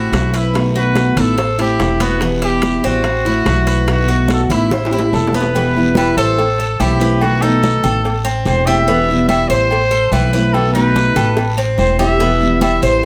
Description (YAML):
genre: latin, Cuban son and guajira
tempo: 144 BPM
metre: 4/4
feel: straight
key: E harmonic minor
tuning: A4 = 442 Hz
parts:
  - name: warm trumpet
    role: melody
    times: 0.0-13.1 s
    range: E4 to E5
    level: -21 LUFS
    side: equal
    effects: plate reverb
  - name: picked steel-string acoustic guitar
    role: accompaniment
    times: 0.0-13.0 s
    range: B2 to F#4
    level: -21 LUFS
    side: equal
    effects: none
  - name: Cuban tres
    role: arpeggios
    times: 0.0-13.1 s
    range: B3 to C5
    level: -23 LUFS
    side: equal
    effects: none
  - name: upright bass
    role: bass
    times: 0.0-13.1 s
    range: E1 to B1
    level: -20 LUFS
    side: equal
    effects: none
  - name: bongos and cowbell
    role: percussion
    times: 0.1-13.0 s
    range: none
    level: -28 LUFS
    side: equal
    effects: none
  - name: congas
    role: percussion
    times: 0.1-13.0 s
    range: none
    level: -25 LUFS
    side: equal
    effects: none
  - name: guiro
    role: percussion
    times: 0.1-13.0 s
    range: none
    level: -36 LUFS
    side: equal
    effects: none
  - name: timbales and agogo bells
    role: percussion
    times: 0.1-12.8 s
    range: none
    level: -27 LUFS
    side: equal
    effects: none
  - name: nylon-string guitar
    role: second line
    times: 4.9-5.5 s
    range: G4 to A4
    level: -27 LUFS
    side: equal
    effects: none
room: moderate studio reverb, RT60 0.8 s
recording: none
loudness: -15 LUFS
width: mono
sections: 0.0-5.6 A section; 5.6-13.1 B section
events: drum fill 4.7-5.6, 11.4-12.2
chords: 0.0 Am; 0.5 B7; 1.4 Am; 2.2 Em; 3.0 Am; 3.9 B7; 4.7 Am; 5.6 Em; 6.4 Am; 7.2 B7; 8.1 Am; 8.9 Em; 9.7 Am; 10.5 B7; 11.4 Am; 12.2 Em